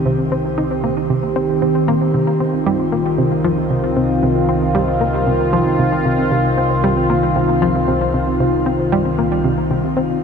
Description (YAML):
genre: ambient, sequencer-driven space music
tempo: 115 BPM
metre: 4/4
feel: straight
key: unclear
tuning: A4 = 441 Hz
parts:
  - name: sweeping resonant pad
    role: sustained chords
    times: 0.0-10.2 s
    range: Eb3 to G4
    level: -16 LUFS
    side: equal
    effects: chorus, phaser, shimmer reverb
  - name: fat analog bass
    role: bass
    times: 0.0-10.2 s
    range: C2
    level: -25 LUFS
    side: equal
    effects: none
  - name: analog pluck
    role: riff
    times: 0.1-10.2 s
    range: C3 to Eb4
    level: -20 LUFS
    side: equal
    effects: chorus, analog delay, shimmer reverb
room: wet huge ambient reverb, RT60 7.8 s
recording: dreamy mix soaked in reverb, cassette tape, nothing above 11.0 kHz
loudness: -14 LUFS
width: side -6 dB against mid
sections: 0.0-10.2 A section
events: none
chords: 0.0 Cm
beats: | 0.05 0.58 1.10 1.62 | 2.14 2.66 3.19 3.71 | 4.23 4.75 5.27 5.79 | 6.32 6.84 7.36 7.88 | 8.40 8.92 9.45 9.97